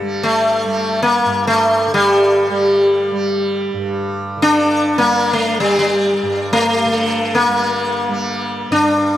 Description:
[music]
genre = indian classical, Hindustani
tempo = free time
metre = none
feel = none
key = unclear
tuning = A4 = 442 Hz
[part]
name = tanpura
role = drone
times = 0.0-9.2 s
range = G2 to G3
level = -23 LUFS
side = right 3 dB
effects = none
[part]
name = sitar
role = melody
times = 0.2-9.2 s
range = G3 to D4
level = -14 LUFS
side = left 1 dB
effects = tape echo
[sound]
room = moderate recital hall reverb, RT60 1.6 s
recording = close, detailed microphones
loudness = -14 LUFS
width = side -12 dB against mid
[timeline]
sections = 0.0-9.2 A section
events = none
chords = none

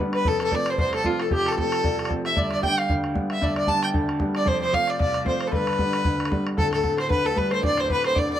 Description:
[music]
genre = celtic folk, Celtic reel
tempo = 228 BPM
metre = 4/4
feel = swing 56% on 8ths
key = G mixolydian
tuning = A4 = 439 Hz
[part]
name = Celtic harp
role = second line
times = 0.0-8.4 s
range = F4 to A5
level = -30 LUFS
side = left 1 dB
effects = none
[part]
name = clear upright piano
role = accompaniment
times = 0.0-8.4 s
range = D1 to D4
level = -27 LUFS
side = equal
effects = none
[part]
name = baroque flute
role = second line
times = 0.1-8.4 s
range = F4 to A5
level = -30 LUFS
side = left 4 dB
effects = none
[part]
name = bodhran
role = percussion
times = 0.1-8.2 s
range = none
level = -28 LUFS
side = equal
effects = none
[part]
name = dark fiddle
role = melody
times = 0.2-8.4 s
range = F4 to A5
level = -25 LUFS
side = right 1 dB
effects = none
[sound]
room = wet small room reverb, RT60 0.5 s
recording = none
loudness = -21 LUFS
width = side -11 dB against mid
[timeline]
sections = 0.0-6.6 A section; 6.6-8.4 B section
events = none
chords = 0.3 F; 2.4 G; 4.5 F; 5.5 G; 6.6 D5

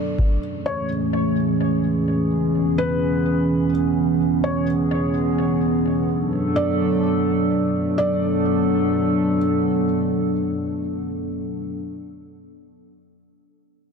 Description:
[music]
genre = hip hop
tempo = free time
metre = none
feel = none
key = B dorian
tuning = A4 = 440 Hz
[part]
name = felt-muted upright piano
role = melody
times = 0.0-9.4 s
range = B4 to D5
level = -28 LUFS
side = equal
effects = tape echo
[part]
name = dark analog pad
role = sustained chords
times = 0.0-11.8 s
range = E3 to A4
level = -19 LUFS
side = equal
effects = wide subtle chorus, sidechain pumping
[sound]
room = light reverb, digital ambience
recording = dense, heavily limited modern master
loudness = -19 LUFS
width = side -5 dB against mid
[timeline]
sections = 0.0-8.0 A section; 8.0-11.8 B section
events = none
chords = 0.4 Amaj7; 2.3 E6; 6.1 Bm7

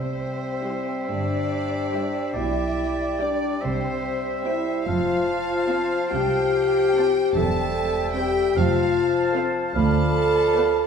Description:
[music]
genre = classical, slow romantic movement for symphony orchestra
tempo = 49 BPM (dotted quarters)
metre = 6/8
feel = uneven beats, rubato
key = C major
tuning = A4 = 440 Hz
[part]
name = rich chamber violin section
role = melody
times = 0.0-10.9 s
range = C5 to A5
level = -33 LUFS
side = left 2 dB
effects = none
[part]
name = clear clarinet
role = second line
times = 0.0-10.9 s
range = C5 to D5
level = -33 LUFS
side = left 1 dB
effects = none
[part]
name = clear oboe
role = second line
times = 0.0-10.9 s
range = D5 to F5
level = -32 LUFS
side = right 2 dB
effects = none
[part]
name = mellow concert flute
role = second line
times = 0.0-10.9 s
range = G5 to B5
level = -34 LUFS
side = left 1 dB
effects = none
[part]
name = mellow bassoon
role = accompaniment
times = 0.0-10.9 s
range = F3 to G3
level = -30 LUFS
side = left 1 dB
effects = none
[part]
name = mellow French horn section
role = sustained chords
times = 0.0-10.9 s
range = C4 to A4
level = -23 LUFS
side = left 2 dB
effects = none
[part]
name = dark chamber cello section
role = bass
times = 0.0-10.7 s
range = C2 to C3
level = -30 LUFS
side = right 4 dB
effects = none
[part]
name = rich chamber double bass section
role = bass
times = 0.0-10.7 s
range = E1 to D2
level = -30 LUFS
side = right 3 dB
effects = none
[part]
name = dark chamber violin section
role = second line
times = 0.6-10.8 s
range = C5 to A5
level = -38 LUFS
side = left 2 dB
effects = none
[part]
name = warm studio viola section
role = accompaniment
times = 0.6-10.9 s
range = G3 to B4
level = -35 LUFS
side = right 2 dB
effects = none
[sound]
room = wet scoring stage reverb, RT60 1.6 s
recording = minimal, uncompressed stereo recording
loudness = -20 LUFS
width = side -6 dB against mid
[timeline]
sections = 0.0-10.9 A section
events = none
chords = 0.0 C; 2.3 G/B; 3.6 C; 4.9 F; 7.4 C/E; 8.6 F; 9.8 Bm7b5/D

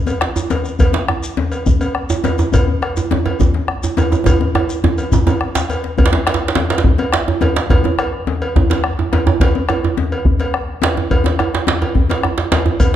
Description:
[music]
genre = west african traditional, West African drum ensemble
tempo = 140 BPM (dotted quarters)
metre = 12/8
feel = straight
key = none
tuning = none
[part]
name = cowbell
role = percussion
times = 0.1-12.9 s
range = none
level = -24 LUFS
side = equal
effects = none
[part]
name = djembe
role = percussion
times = 0.1-12.9 s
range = none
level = -19 LUFS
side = left 5 dB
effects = none
[part]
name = shekere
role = percussion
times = 0.1-5.8, 12.8-12.9 s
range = none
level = -26 LUFS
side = left 3 dB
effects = none
[part]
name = bombo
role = percussion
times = 0.2-12.9 s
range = none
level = -18 LUFS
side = equal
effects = none
[part]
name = djembe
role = percussion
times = 0.2-12.8 s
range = none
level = -18 LUFS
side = right 4 dB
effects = none
[sound]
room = wet recital hall reverb, RT60 1.4 s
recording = dark, warm production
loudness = -14 LUFS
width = side -11 dB against mid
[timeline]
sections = 0.0-6.0 A section; 6.0-13.0 B section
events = speeding up 0.0-13.0; drum fill 4.3-6.0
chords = none

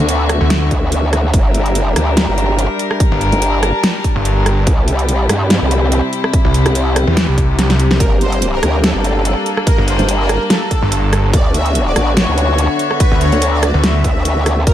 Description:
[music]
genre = heavy wobble dubstep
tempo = 144 BPM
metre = 4/4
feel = swing 54% on 16ths, half-time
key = G dorian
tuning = A4 = 440 Hz
[part]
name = warm chamber string section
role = sustained chords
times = 0.0-14.7 s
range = C3 to Bb4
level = -21 LUFS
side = left 2 dB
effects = sidechain pumping
[part]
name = growl bass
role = bass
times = 0.0-14.7 s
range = G1 to G2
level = -15 LUFS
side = equal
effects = chorus, overdrive
[part]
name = airy breathy pad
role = texture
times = 0.0-14.7 s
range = C4 to A5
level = -23 LUFS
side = left 2 dB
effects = chorus, sidechain pumping
[part]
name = dubstep drum kit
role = drums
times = 0.1-14.7 s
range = hi-hat, rim click, snare drum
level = -18 LUFS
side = right 1 dB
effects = studio reverb
[part]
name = snarling distorted saw bass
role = bass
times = 0.4-14.0 s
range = G1 to E2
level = -14 LUFS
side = equal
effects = distortion, overdrive
[part]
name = electronic kick drum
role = drums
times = 0.7-14.7 s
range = none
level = -14 LUFS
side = equal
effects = studio reverb
[part]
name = soft supersaw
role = melody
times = 8.0-14.7 s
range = A4 to E5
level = -21 LUFS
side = right 2 dB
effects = tape echo
[sound]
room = light reverb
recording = none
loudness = -12 LUFS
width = side -12 dB against mid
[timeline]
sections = 0.0-14.7 A section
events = kick drops out 7.6-8.0; drum fill 7.6-8.0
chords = 0.0 D6; 1.3 Gm; 4.7 C; 8.0 Gm; 11.3 D6

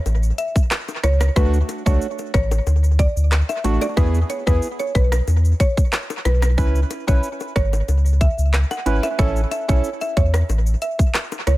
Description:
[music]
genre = dancehall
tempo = 92 BPM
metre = 4/4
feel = straight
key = unclear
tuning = A4 = 440 Hz
[part]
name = downlifter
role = sound effects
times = 0.1-1.4 s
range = none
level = -52 LUFS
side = left 3 dB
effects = none
[part]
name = warm sub bass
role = bass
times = 0.1-11.6 s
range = G#1 to E2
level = -17 LUFS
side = equal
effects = none
[part]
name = glitchy drum kit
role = drums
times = 0.1-11.6 s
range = handclaps, hi-hat, kick drum, rim click, shaker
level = -20 LUFS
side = equal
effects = overdrive, tape echo
[part]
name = bongos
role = percussion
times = 0.1-11.6 s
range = none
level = -33 LUFS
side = left 7 dB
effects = tape echo
[part]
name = mallet-like synth pluck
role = melody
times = 0.4-11.6 s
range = B4 to F#5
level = -26 LUFS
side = right 1 dB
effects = chorus, tape echo
[part]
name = percussive organ stab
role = accompaniment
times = 1.4-9.9 s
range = A3 to B4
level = -26 LUFS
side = right 3 dB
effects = chorus, sidechain pumping, tape echo
[sound]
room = digital ambience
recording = echo-heavy mix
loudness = -17 LUFS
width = side -17 dB against mid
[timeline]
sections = 0.0-11.6 A section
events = none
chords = 0.0 A; 1.4 D; 4.0 E; 6.6 C#m7; 9.2 A

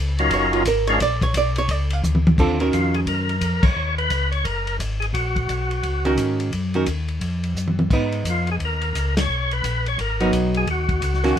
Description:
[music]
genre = soul jazz organ trio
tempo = 174 BPM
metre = 4/4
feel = swing 63% on 8ths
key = Eb minor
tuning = A4 = 441 Hz
[part]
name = mellow tonewheel organ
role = bass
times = 0.0-11.4 s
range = Gb1 to Ab2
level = -23 LUFS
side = left 1 dB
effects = slow rotary speaker
[part]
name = percussive tonewheel organ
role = melody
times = 0.2-6.1, 8.3-11.4 s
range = Gb3 to Db5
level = -23 LUFS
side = left 1 dB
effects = overdrive, fast rotary speaker
[part]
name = warm soul drum kit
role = drums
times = 0.2-11.4 s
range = crash cymbal, hi-hat, kick drum, ride cymbal, snare drum, toms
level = -25 LUFS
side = left 1 dB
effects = none
[part]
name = archtop guitar, miked and amplified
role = accompaniment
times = 0.3-3.3, 6.1-11.4 s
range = D3 to F5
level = -21 LUFS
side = right 3 dB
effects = none
[sound]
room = light reverb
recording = minimal, uncompressed stereo recording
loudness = -19 LUFS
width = side -9 dB against mid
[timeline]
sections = 0.0-2.4 A section; 2.4-11.4 B section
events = hollow-body jazz guitar solo 0.0-2.4; drum fill 2.0-2.4, 7.6-7.9; band accent 3.6, 9.1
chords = 0.0 Ebm7; 1.0 Bb; 2.4 Ebm7; 7.9 Abm7; 10.7 Ebm7

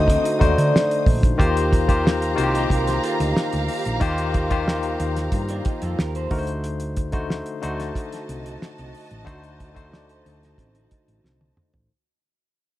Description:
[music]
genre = lush 1970s-style soul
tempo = 91 BPM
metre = 4/4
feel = straight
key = unclear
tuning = A4 = 439 Hz
[part]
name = vibraphone with soft mallets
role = melody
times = 0.0-1.0 s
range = D5 to Eb5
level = -23 LUFS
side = equal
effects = none
[part]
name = muted studio string section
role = second line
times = 0.0-11.5 s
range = Eb4 to Eb6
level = -31 LUFS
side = right 3 dB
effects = none
[part]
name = barky tine electric piano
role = accompaniment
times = 0.0-11.9 s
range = D3 to C5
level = -25 LUFS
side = left 4 dB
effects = medium stereo tremolo
[part]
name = electric guitar through a small old amp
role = riff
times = 0.0-11.7 s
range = C4 to D5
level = -32 LUFS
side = right 6 dB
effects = lush chorus
[part]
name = hollow-body short-scale fingered electric bass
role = bass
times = 0.0-11.9 s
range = A1 to D3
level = -25 LUFS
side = right 1 dB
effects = none
[part]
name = cloth-damped thuddy drum kit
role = drums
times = 0.1-11.9 s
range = hi-hat, kick drum, snare drum, toms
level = -22 LUFS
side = right 1 dB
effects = none
[sound]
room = small room ambience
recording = none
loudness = -19 LUFS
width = side -15 dB against mid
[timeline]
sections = 0.0-1.4 A section; 1.4-11.9 B section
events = fade-out 1.4-11.9; drum fill 11.2-11.9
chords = 0.0 D7b9; 1.4 Eb69; 6.3 D7b9

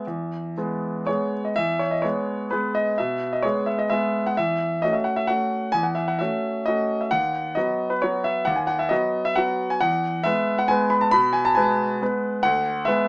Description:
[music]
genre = classical, piano waltz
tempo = 116-144 BPM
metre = 3/4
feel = rubato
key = E major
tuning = A4 = 444 Hz
[part]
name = clear concert grand piano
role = solo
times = 0.0-13.1 s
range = D2 to B5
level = -20 LUFS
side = equal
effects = none
[sound]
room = light reverb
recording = small speaker sound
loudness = -20 LUFS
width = side -28 dB against mid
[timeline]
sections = 0.0-1.6 A section; 1.6-13.1 A section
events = none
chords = 0.0 E; 4.4 F#m7/E; 7.1 B/D#; 9.8 E; 12.4 E7/D

